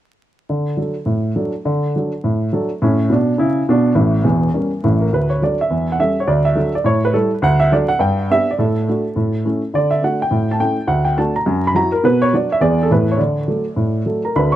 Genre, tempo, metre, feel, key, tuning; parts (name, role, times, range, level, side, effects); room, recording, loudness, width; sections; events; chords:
jazz, stride piano; 208 BPM; 4/4; swing 59% on 8ths; D major; A4 = 440 Hz
warm baby grand piano; solo; 0.5-14.6 s; E1 to C#6; -14 LUFS; right 1 dB
moderate booth ambience, RT60 0.2 s; dry, close 1970s-style studio recording, vinyl crackle; -15 LUFS; side -12 dB against mid
0.5-5.1 A section; 5.1-14.3 B section
0.5 D; 2.8 D5/A; 4.0 A7b9; 5.1 D; 5.7 A7/E; 6.3 D; 6.8 A5; 7.4 D; 8.0 G; 8.6 D/A; 9.2 A; 9.7 D; 10.3 A7; 10.9 D; 11.5 F#7; 12.0 Bm; 12.6 E7; 12.9 A5; 13.2 D